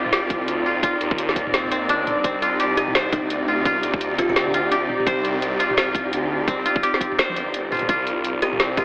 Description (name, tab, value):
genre	half-time drum and bass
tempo	170 BPM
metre	4/4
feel	swing 59% on 16ths, half-time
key	C minor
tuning	A4 = 438 Hz
part	warm symphonic string section	sustained chords	0.0-8.8 s	C4 to D5	-24 LUFS	equal	sidechain pumping
part	koto	arpeggios	0.0-8.8 s	C4 to C5	-23 LUFS	equal	dub echo
part	phased detuned saw bass	bass	0.0-8.8 s	G1 to Eb2	-28 LUFS	equal	phaser
part	drum and bass drum kit	drums	0.1-8.8 s	hi-hat, snare drum, toms	-24 LUFS	equal	none
part	electronic kick drum	drums	0.3-8.8 s	none	-24 LUFS	equal	none
part	kalimba	melody	2.8-4.3, 8.4-8.8 s	Eb4 to G4	-26 LUFS	equal	dub echo
room	moderate lush hall reverb, RT60 1.9 s, small room ambience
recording	AM radio sound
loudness	-18 LUFS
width	side -24 dB against mid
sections	0.0-8.8 A section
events	none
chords	0.0 Cmadd9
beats	0.13 0.48 | 0.83 1.19 1.54 1.89 | 2.24 2.60 2.95 3.30 | 3.66 4.01 4.36 4.71 | 5.07 5.42 5.77 6.13 | 6.48 6.83 7.18 7.54 | 7.89 8.24 8.60